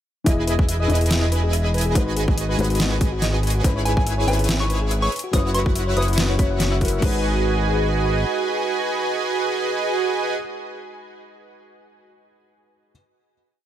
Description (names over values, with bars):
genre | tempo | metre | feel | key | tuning
future bass | 142 BPM | 4/4 | swing 54% on 16ths, half-time | G# minor | A4 = 441 Hz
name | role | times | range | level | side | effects
felt-muted upright piano | accompaniment | 0.2-12.9 s | E3 to D#5 | -28 LUFS | left 3 dB | sidechain pumping, tape echo
thumb-piano-like synth pluck | arpeggios | 0.3-7.2 s | F#4 to B5 | -32 LUFS | left 2 dB | chorus, sidechain pumping, tape echo
big bright polysynth | riff | 0.3-10.4 s | E4 to G#5 | -24 LUFS | right 2 dB | lush chorus, sidechain pumping, tape echo
fat analog bass | bass | 0.3-8.3 s | E1 to G#1 | -22 LUFS | equal | sidechain pumping
dubstep drum kit | drums | 0.3-7.1 s | crash cymbal, hi-hat, snare drum | -26 LUFS | equal | overdrive, small room ambience
electronic kick drum | drums | 0.3-7.1 s | none | -20 LUFS | equal | overdrive, small room ambience
hollow square pluck | melody | 3.9-6.4 s | G#5 to D#6 | -28 LUFS | right 1 dB | chorus, sidechain pumping, tape echo
room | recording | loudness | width
digital ambience | none | -18 LUFS | side -11 dB against mid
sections
0.3-7.0 drop; 7.0-10.4 final chord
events
drop 0.3-7.0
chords
0.3 Emaj7; 2.0 G#m7; 3.6 C#m7/G#; 5.1 F#7sus4; 7.0 G#m7